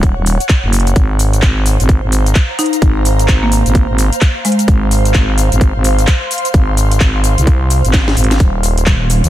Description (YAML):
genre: bass house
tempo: 129 BPM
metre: 4/4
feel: swing 61% on 16ths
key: unclear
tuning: A4 = 439 Hz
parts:
  - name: growling FM bass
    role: bass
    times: 0.0-9.3 s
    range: Eb1 to Eb2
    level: -12 LUFS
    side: equal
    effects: sidechain pumping
  - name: electronic kick drum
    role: drums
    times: 0.0-9.0 s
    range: none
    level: -10 LUFS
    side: equal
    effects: none
  - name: house drum kit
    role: drums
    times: 0.0-9.3 s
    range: handclaps, hi-hat, shaker, snare drum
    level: -19 LUFS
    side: equal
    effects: none
  - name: ethereal airy pad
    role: texture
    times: 0.0-9.3 s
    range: C5 to C6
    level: -21 LUFS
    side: right 1 dB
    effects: ensemble chorus, built-in reverb, sidechain pumping
  - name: buzzing marimba with medium hard mallets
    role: melody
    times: 2.6-4.8 s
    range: Ab3 to Eb4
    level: -18 LUFS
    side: left 1 dB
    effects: digital delay
  - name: pulsing pluck wobble bass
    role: bass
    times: 8.9-9.2 s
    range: Eb1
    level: -13 LUFS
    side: equal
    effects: chorus, tube saturation, sidechain pumping
room: digital ambience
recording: dense, heavily limited modern master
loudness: -10 LUFS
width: side -14 dB against mid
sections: 0.0-9.3 A section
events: drum fill 7.9-8.4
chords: 0.0 Ebm; 1.0 Ab; 8.4 N.C.